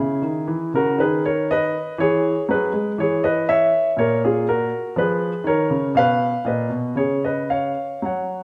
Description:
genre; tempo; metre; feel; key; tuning
classical, baroque-style suite movement for grand piano; 60 BPM; 4/4; rubato; unclear; A4 = 440 Hz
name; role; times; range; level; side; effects
clear baby grand piano; solo; 0.0-8.4 s; A#2 to F#5; -21 LUFS; equal; none
room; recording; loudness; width
wet stone room reverb, RT60 1.3 s; dark, warm production; -21 LUFS; mono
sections
0.0-8.4 A section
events
none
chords
0.0 C#m; 4.0 A#m; 5.9 B; 7.0 C#7

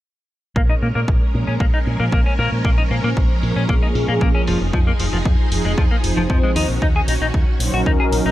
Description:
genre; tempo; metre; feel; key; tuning
nu-disco, nu disco; 115 BPM; 4/4; straight; Bb minor; A4 = 440 Hz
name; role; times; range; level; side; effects
string machine, full ensemble; sustained chords; 0.6-8.3 s; Eb3 to Bb4; -27 LUFS; equal; ensemble chorus, sidechain pumping
clean electric guitar; riff; 0.6-8.3 s; F3 to Ab4; -24 LUFS; left 2 dB; lush chorus, low-pass filter
fingered electric bass with an envelope filter; bass; 0.6-8.3 s; F1 to Bb2; -21 LUFS; equal; none
electronic kick drum; drums; 0.6-8.0 s; none; -18 LUFS; equal; none
electronic hi-hat; drums; 0.8-8.2 s; none; -30 LUFS; left 1 dB; low-pass filter on hats
warm analog pad; accompaniment; 1.3-8.3 s; F3 to C5; -24 LUFS; equal; chorus, sidechain pumping, analog delay
room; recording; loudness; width
digital ambience; none; -16 LUFS; side -15 dB against mid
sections
0.6-8.3 A section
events
filter sweep on fingered electric bass 0.6-8.3; filter sweep on analog synth pad 0.6-8.3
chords
0.6 Bbm7; 4.5 Fm7; 6.6 Ebm7

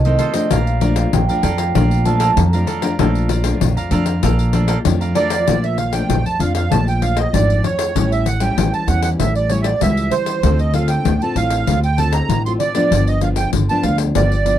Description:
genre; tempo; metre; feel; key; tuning
samba and choro; 97 BPM; 4/4; straight; Bb major; A4 = 439 Hz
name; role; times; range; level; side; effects
vibraphone with soft mallets; second line; 0.0-3.0 s; Eb5 to Bb5; -22 LUFS; right 5 dB; slapback echo
nylon-string guitar; accompaniment; 0.0-14.6 s; F2 to A4; -22 LUFS; left 3 dB; none
upright bass; bass; 0.0-14.6 s; G1 to F2; -17 LUFS; right 1 dB; none
pandeiro; percussion; 0.0-14.6 s; none; -22 LUFS; left 12 dB; none
cavaquinho; accompaniment; 0.1-5.5 s; F4 to Bb5; -26 LUFS; right 7 dB; none
accordion; melody; 5.2-14.6 s; C5 to C6; -20 LUFS; right 5 dB; light tremolo tuning
room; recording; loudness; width
little or no reverb; dry, close 1970s-style studio recording; -14 LUFS; side -11 dB against mid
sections
0.0-5.5 A section; 5.5-14.6 B section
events
vibraphone solo 0.0-5.5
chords
0.0 F7; 0.5 Bbmaj7; 8.0 A7; 10.4 Dm7; 12.9 G7

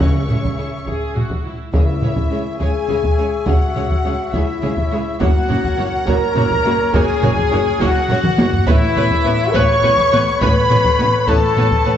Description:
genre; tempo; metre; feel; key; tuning
cinematic, epic orchestral film score; 69 BPM (dotted quarters); 6/8; straight; C# minor; A4 = 442 Hz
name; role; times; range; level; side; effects
warm symphonic violin section; melody; 0.0-12.0 s; E5 to C#6; -28 LUFS; left 1 dB; none
rich symphonic violin section; second line; 0.0-11.9 s; C#5; -30 LUFS; right 2 dB; none
rich symphonic viola section; accompaniment; 0.0-11.9 s; G#3 to B4; -26 LUFS; right 1 dB; none
dark French horn section; sustained chords; 0.0-12.0 s; C#4 to C#5; -19 LUFS; left 3 dB; none
mellow woodwind section; sustained chords; 0.0-12.0 s; B3 to E5; -28 LUFS; left 2 dB; none
clear symphonic double bass section; bass; 0.0-11.9 s; F#1 to C#2; -25 LUFS; right 2 dB; none
warm chamber cello section; bass; 0.0-11.9 s; F#2 to C#3; -27 LUFS; right 2 dB; none
taiko ensemble; drums; 0.0-12.0 s; none; -18 LUFS; equal; none
timpani; percussion; 0.0-2.6 s; C#3; -25 LUFS; equal; none
mellow hollow concert flute; second line; 1.7-12.0 s; E5 to C#6; -24 LUFS; left 1 dB; none
room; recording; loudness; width
wet recital hall reverb, RT60 1.6 s; recorded in a church or concert hall, nothing above 8.0 kHz; -14 LUFS; side -9 dB against mid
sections
0.0-1.7 A section; 1.7-12.0 B section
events
drum fill 8.2-8.7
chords
0.0 C#m; 5.2 F#; 8.7 Aadd9

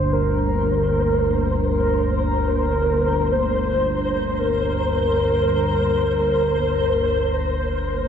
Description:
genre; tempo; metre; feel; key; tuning
dark ambient drone; free time; none; none; G minor; A4 = 439 Hz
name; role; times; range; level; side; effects
mellow horn-like synth lead; melody; 0.0-8.1 s; Bb4 to C5; -22 LUFS; equal; lush chorus, shimmer reverb, analog delay
dark analog pad; sustained chords; 0.0-8.1 s; Bb3 to G5; -30 LUFS; right 1 dB; chorus
gamelan-type bronze metallophone; arpeggios; 0.0-2.0 s; none; barely audible; none; none
analog drone; drone; 0.0-8.1 s; G1 to D2; -22 LUFS; equal; wide subtle chorus
flickering grainy texture; texture; 0.4-8.1 s; C5; -26 LUFS; equal; built-in reverb, ensemble chorus, shimmer reverb
room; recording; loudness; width
wet lush hall reverb, RT60 2.6 s; dreamy mix soaked in reverb; -18 LUFS; side -8 dB against mid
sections
0.0-8.1 A section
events
fade-out on analog synth pad 0.0-8.1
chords
0.0 Gm

